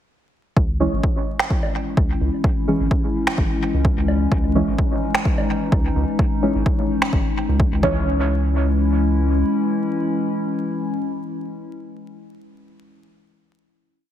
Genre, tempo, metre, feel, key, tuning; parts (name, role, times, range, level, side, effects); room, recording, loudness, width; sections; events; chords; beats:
dub techno; 128 BPM; 4/4; swing 53% on 16ths; C# minor; A4 = 441 Hz
warbly tape-like pad; sustained chords; 1.3-12.5 s; E3 to E4; -23 LUFS; left 2 dB; chorus, built-in reverb, sidechain pumping
round analog bass; bass; 0.6-9.4 s; G#1 to C#2; -21 LUFS; equal; tube saturation, sidechain pumping
electronic kick drum; drums; 0.6-7.9 s; -20 LUFS; equal; overdrive
deep mellow chord stab; stabs; 0.8-12.5 s; E3 to C#4; -23 LUFS; right 1 dB; chorus, phaser, sidechain pumping, dub echo
electronic finger snaps; drums; 1.4-7.1 s; -26 LUFS; left 2 dB; dub echo
cowbell and woodblock; percussion; 1.4-7.9 s; -28 LUFS; right 5 dB; overdrive, sidechain pumping on perc, dub echo
light reverb; heavily compressed radio sound, multiband compression, vinyl crackle; -18 LUFS; side -10 dB against mid
0.6-8.1 groove; 8.1-11.8 final hit
0.6 C#m
| 0.57 1.04 1.50 1.97 | 2.44 2.91 3.38 3.85 | 4.32 4.79 5.25 5.72 | 6.19 6.66 7.13 7.60 | 8.07 8.54 9.00 9.47 | 9.94 10.41 10.88 11.35